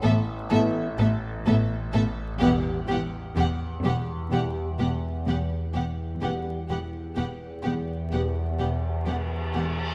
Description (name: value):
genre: cinematic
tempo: 63 BPM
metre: 4/4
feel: straight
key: unclear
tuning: A4 = 438 Hz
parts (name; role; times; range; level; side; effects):
- warm studio violin section; second line; 0.0-9.6 s; G4 to A4; -38 LUFS; equal; none
- warm studio viola section; accompaniment; 0.0-9.6 s; B3; -34 LUFS; equal; none
- warm studio cello section; riff; 0.0-9.8 s; E2 to E3; -35 LUFS; equal; none
- warm chamber double bass section; bass; 0.0-9.6 s; E1 to A1; -34 LUFS; equal; none
- warm studio cello section; bass; 0.0-9.6 s; E2 to A2; -32 LUFS; equal; none
- overtone-sweeping drone; drone; 0.0-9.9 s; A1 to E2; -34 LUFS; equal; chorus, built-in reverb
- felt-muted upright piano; texture; 0.0-9.9 s; B4 to F#5; -46 LUFS; equal; none
- dark studio violin section; melody; 0.1-9.6 s; E5 to F#5; -39 LUFS; equal; none
- dark trombone section; sustained chords; 0.5-8.5 s; E3 to A3; -36 LUFS; equal; none
- mellow French horn section; sustained chords; 0.5-8.5 s; B3 to G4; -36 LUFS; equal; none
room: moderate scoring stage reverb, RT60 2.1 s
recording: vinyl crackle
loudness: -27 LUFS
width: mono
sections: 0.0-9.9 A section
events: none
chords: 0.0 Asus2; 2.4 Emadd9